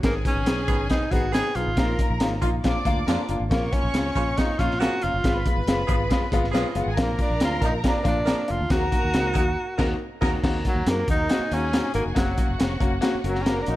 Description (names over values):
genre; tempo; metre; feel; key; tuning
uptempo 1960s-style soul; 138 BPM; 4/4; straight; Eb minor; A4 = 440 Hz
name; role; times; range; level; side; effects
muted studio string section; second line; 0.0-13.8 s; Cb4 to D6; -32 LUFS; equal; none
warm concert grand piano; accompaniment; 0.0-13.8 s; Ab3 to Ab4; -29 LUFS; left 3 dB; none
fingered electric bass; bass; 0.0-13.8 s; F1 to Gb2; -29 LUFS; equal; none
crunchy breakbeat drum kit; drums; 0.0-13.8 s; crash cymbal, hi-hat, kick drum, snare drum; -24 LUFS; equal; none
breathy tenor saxophone; melody; 0.1-13.8 s; Gb3 to Ab4; -27 LUFS; equal; none
clear saxophone section; second line; 0.7-10.3 s; Db3 to Bb4; -34 LUFS; right 4 dB; none
room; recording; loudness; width
light reverb, small room reverb; none; -21 LUFS; side -15 dB against mid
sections
0.0-10.4 A section; 10.4-13.8 B section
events
band accent 9.6-10.4; tenor saxophone solo 10.4-13.8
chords
0.0 Abm; 1.8 Bbsus4; 2.6 Bb; 3.5 Bbm; 5.2 Fdim; 7.0 Bb; 8.7 Ebm; 12.2 Gb